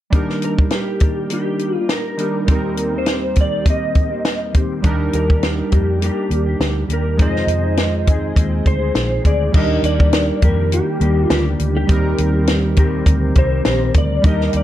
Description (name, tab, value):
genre	indie pop, bedroom pop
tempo	102 BPM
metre	4/4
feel	swing 55% on 16ths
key	Eb major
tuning	A4 = 439 Hz
part	mellow electric guitar	accompaniment	0.1-14.6 s	F2 to Bb4	-24 LUFS	left 3 dB	ensemble chorus, warbly pitch drift
part	warbly lo-fi synth keys	accompaniment	0.1-14.6 s	Eb2 to C5	-24 LUFS	right 4 dB	chorus, cassette tape
part	compact cocktail drum kit	drums	0.1-14.6 s	crash cymbal, hi-hat, kick drum, snare drum	-16 LUFS	equal	none
part	clean lap steel guitar	melody	0.4-14.6 s	G4 to Eb5	-23 LUFS	equal	ensemble chorus
part	vintage muted fingered electric bass	bass	4.8-14.6 s	Bb1 to F2	-19 LUFS	equal	none
room	moderate studio reverb, RT60 0.6 s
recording	dark, warm production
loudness	-15 LUFS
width	side -13 dB against mid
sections	0.1-9.5 A section; 9.5-14.6 B section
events	none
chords	0.1 Ebmaj7; 2.5 Cm7/Eb; 4.8 Ebmaj7; 7.2 Fm7; 9.5 Ebmaj7; 11.9 Cm7/Eb